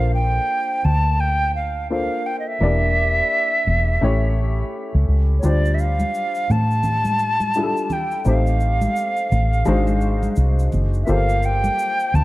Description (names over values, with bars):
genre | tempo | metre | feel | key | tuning
hip hop, jazz-hop | 85 BPM | 4/4 | swing 60% on 16ths | unclear | A4 = 441 Hz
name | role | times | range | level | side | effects
hollow concert flute | melody | 0.0-12.2 s | C#5 to A5 | -21 LUFS | equal | slapback echo
warm upright piano | accompaniment | 0.0-12.2 s | G3 to D5 | -26 LUFS | left 2 dB | none
fingered electric bass | bass | 0.0-12.2 s | E1 to A2 | -19 LUFS | equal | none
egg shaker and congas | percussion | 5.4-12.2 s | none | -29 LUFS | right 1 dB | none
room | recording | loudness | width
light reverb, studio reverb | dark, warm production | -17 LUFS | side -18 dB against mid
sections
0.0-12.2 A section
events
none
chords
0.0 Bbmaj9; 2.6 Em7b5; 4.0 A7; 5.4 Dm11; 8.3 Am7b5; 9.7 Ab7#11; 11.1 Gm11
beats
0.49 1.20 1.91 | 2.61 3.32 4.02 4.73 | 5.44 6.14 6.85 7.55 | 8.26 8.96 9.67 10.38 | 11.08 11.79